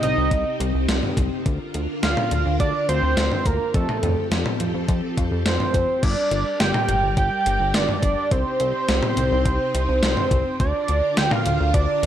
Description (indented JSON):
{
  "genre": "synth-pop",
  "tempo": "105 BPM",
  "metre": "4/4",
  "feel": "straight",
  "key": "C dorian",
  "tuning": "A4 = 438 Hz",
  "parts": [
    { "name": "fat analog lead", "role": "melody", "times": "0.0-12.1 s", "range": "A4 to G5", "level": "-23 LUFS", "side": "right 2 dB", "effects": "chorus, slapback echo" },
    { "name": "string machine, violins", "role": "sustained chords", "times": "0.0-12.1 s", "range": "C3 to D5", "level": "-29 LUFS", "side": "left 1 dB", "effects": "ensemble chorus" },
    { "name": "chorused synth bass", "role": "bass", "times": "0.0-12.1 s", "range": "G1 to F2", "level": "-24 LUFS", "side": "equal", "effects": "none" },
    { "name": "gated 80s digital drum machine", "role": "drums", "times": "0.0-12.1 s", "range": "crash cymbal, hi-hat, kick drum, snare drum, toms", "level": "-23 LUFS", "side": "left 1 dB", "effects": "gated reverb, gated reverb snare, overdrive" }
  ],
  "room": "light reverb",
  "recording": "none",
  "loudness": "-19 LUFS",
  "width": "side -10 dB against mid",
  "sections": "0.0-6.0 A section; 6.0-12.1 B section",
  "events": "none",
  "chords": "0.0 Cm; 1.5 Bb/D; 3.7 Fadd9; 6.0 Gm; 8.3 Cm; 10.6 Bb/D"
}